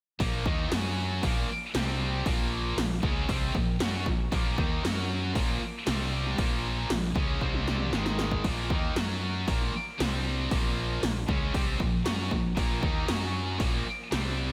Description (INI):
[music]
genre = hard rock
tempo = 116 BPM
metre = 4/4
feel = straight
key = Bb minor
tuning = A4 = 440 Hz
[part]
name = distorted electric guitar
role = riff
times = 0.2-14.5 s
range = Ab2 to Gb4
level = -38 LUFS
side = equal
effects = distortion
[part]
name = distorted electric guitar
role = riff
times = 0.2-14.5 s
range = Ab2 to Gb4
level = -38 LUFS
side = equal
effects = overdrive, slapback echo
[part]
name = high-gain distorted guitar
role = riff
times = 0.2-14.5 s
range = Ab2 to Gb4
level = -37 LUFS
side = equal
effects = distortion
[part]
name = fingered electric bass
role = bass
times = 0.2-14.5 s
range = Ab1 to Gb2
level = -35 LUFS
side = equal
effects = none
[part]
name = 80s electronic pad drums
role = drums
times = 0.2-14.2 s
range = crash cymbal, kick drum, snare drum, toms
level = -33 LUFS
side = equal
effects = gated reverb on snare and toms, overdrive
[sound]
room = moderate lush hall reverb, RT60 1.9 s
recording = big arena sound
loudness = -29 LUFS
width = mono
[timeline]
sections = 0.2-14.5 A section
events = drum fill 7.4-8.4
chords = 0.2 Bb5; 0.7 Gb5; 1.2 Bb5; 1.7 C5; 2.3 Bbm; 4.8 Gb5; 5.4 Bb5; 5.9 C5; 6.4 Bbm; 7.4 C5; 7.9 Ab5; 8.4 Bb5; 9.0 Gb5; 9.5 Bb5; 10.0 C5; 10.5 Bbm; 13.1 Gb5; 13.6 Bb5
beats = | 0.20 0.71 1.23 1.75 | 2.26 2.78 3.29 3.81 | 4.33 4.84 5.36 5.87 | 6.39 6.90 7.42 7.93 | 8.45 8.96 9.48 9.99 | 10.51 11.02 11.54 12.05 | 12.57 13.09 13.60 14.12